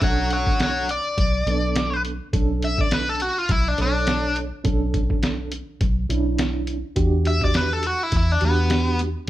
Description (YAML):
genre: straight-eighth soul blues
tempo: 104 BPM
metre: 4/4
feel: swing 55% on 16ths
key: B minor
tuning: A4 = 440 Hz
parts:
  - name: smooth overdriven lead guitar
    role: melody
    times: 0.0-9.0 s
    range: B3 to F#5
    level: -23 LUFS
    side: left 1 dB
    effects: none
  - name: mellow reed electric piano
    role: accompaniment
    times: 0.0-9.1 s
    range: B3 to C#5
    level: -28 LUFS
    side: right 4 dB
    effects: fast tremolo
  - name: vintage muted fingered electric bass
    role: bass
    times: 0.0-9.1 s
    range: B1 to E2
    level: -24 LUFS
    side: equal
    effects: none
  - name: lo-fi sampler-style drum kit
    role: drums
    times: 0.0-9.3 s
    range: hi-hat, kick drum, snare drum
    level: -24 LUFS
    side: equal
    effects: none
room: light reverb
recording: band playing live in one room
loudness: -19 LUFS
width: side -14 dB against mid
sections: 0.0-9.3 A section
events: none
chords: 0.0 Bm9; 7.0 Em9